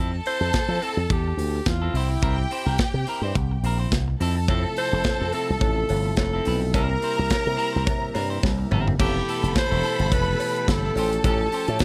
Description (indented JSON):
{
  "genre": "disco",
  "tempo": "106 BPM",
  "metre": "4/4",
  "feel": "swing 56% on 16ths",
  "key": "unclear",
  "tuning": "A4 = 440 Hz",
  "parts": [
    { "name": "warm studio string section", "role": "second line", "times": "0.0-11.8 s", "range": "G4 to B5", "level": "-34 LUFS", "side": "equal", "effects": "none" },
    { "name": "semi-hollow electric guitar", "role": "accompaniment", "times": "0.0-11.8 s", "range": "B3 to C5", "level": "-33 LUFS", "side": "equal", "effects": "none" },
    { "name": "slap bass with an envelope filter", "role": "bass", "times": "0.0-11.8 s", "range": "E1 to F3", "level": "-27 LUFS", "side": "equal", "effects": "none" },
    { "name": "breathy alto saxophone", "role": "melody", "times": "0.3-11.8 s", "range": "E4 to C5", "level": "-30 LUFS", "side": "equal", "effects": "none" },
    { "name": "modern studio drum kit", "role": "drums", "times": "0.3-11.8 s", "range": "crash cymbal, hi-hat, kick drum, snare drum, toms", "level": "-29 LUFS", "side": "equal", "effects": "none" },
    { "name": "tonewheel organ", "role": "sustained chords", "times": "4.5-11.8 s", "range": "B2 to G4", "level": "-35 LUFS", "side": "equal", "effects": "slow rotary speaker" },
    { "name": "cowbell", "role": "percussion", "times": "4.5-11.8 s", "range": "none", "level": "-40 LUFS", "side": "equal", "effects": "none" }
  ],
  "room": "light reverb",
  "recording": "none",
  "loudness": "-23 LUFS",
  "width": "mono",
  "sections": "0.0-9.0 A section; 9.0-11.8 B section",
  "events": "drum fill 8.4-9.0",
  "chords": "0.0 Fmaj7; 1.9 C7; 4.2 Fmaj7; 6.7 C7; 9.0 Fmaj9#11; 11.0 A7alt",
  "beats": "0.54 1.10 1.66 | 2.23 2.79 3.36 3.92 | 4.49 5.05 5.62 6.18 | 6.74 7.31 7.87 8.44 | 9.00 9.56 10.12 10.69 | 11.25 11.81"
}